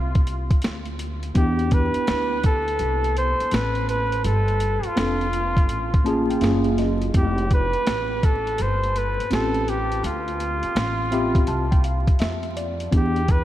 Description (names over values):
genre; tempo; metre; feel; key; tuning
hip hop, jazz-hop; 83 BPM; 4/4; swing 65% on 16ths; D dorian; A4 = 436 Hz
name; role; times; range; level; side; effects
clear flugelhorn; melody; 0.0-13.4 s; F4 to C5; -25 LUFS; right 1 dB; analog delay
upright bass; bass; 0.0-13.4 s; F1 to F2; -26 LUFS; equal; none
boom bap sampler-style drum kit; drums; 0.1-13.4 s; hi-hat, kick drum, snare drum; -24 LUFS; equal; none
mellow tine electric piano; accompaniment; 1.3-13.2 s; A3 to B5; -27 LUFS; left 1 dB; medium stereo tremolo
room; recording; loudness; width
moderate cathedral reverb, RT60 5.8 s; dreamy mix soaked in reverb, vinyl crackle; -19 LUFS; side -13 dB against mid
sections
0.0-13.4 A section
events
tine electric piano fill 5.7-7.1, 10.8-12.9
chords
0.0 Dm7; 1.4 Cmaj7; 4.2 G9sus4; 6.4 F#maj9; 7.1 Fmaj9; 9.3 A7alt; 10.0 Dm11; 12.9 Cmaj7 (rootless)